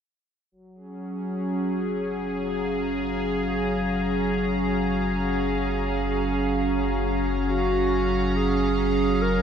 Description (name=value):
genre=ambient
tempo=free time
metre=none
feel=none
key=F# major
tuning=A4 = 440 Hz
part: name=evolving wavetable pad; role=sustained chords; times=0.9-9.4 s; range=F#3 to A#5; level=-24 LUFS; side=right 1 dB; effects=chorus, built-in reverb
part: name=warm sub bass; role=bass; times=0.5-9.4 s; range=F#1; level=-31 LUFS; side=left 1 dB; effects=none
part: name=breathy clarinet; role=melody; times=7.5-9.4 s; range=F#4 to A#4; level=-25 LUFS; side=equal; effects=ping-pong delay
room=moderate huge ambient reverb, RT60 8.5 s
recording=none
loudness=-22 LUFS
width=side -7 dB against mid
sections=0.5-9.4 A section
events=fade-in on sub bass 0.5-9.4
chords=0.5 F#maj7